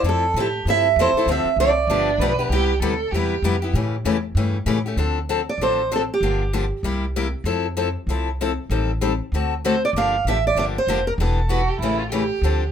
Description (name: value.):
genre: acoustic string swing (jazz manouche).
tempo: 194 BPM.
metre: 4/4.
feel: swing 60% on 8ths.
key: D minor.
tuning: A4 = 442 Hz.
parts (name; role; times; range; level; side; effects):
picked steel-string acoustic guitar; accompaniment; 0.0-12.6 s; C3 to A4; -24 LUFS; left 5 dB; none.
upright bass; bass; 0.0-12.7 s; E1 to A2; -24 LUFS; equal; none.
picked acoustic archtop guitar; melody; 0.1-2.4, 5.5-6.5, 9.7-12.1 s; G4 to F5; -21 LUFS; right 4 dB; none.
warm violin; second line; 1.9-3.7, 11.5-12.7 s; D4 to B4; -24 LUFS; right 5 dB; none.
room: moderate club reverb, RT60 0.6 s.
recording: minimal, uncompressed stereo recording.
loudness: -19 LUFS.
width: side -8 dB against mid.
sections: 0.0-5.0 A section; 5.0-12.7 B section.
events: none.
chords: 0.0 Fmaj9; 1.3 Dm7; 1.9 G7; 2.5 Cmaj7; 3.7 A7; 5.0 Dm7; 6.2 Gm7; 6.8 C7; 7.5 Fmaj7; 8.7 Am7b5; 9.3 D7; 9.9 Gm9; 11.2 Em7; 11.8 A7.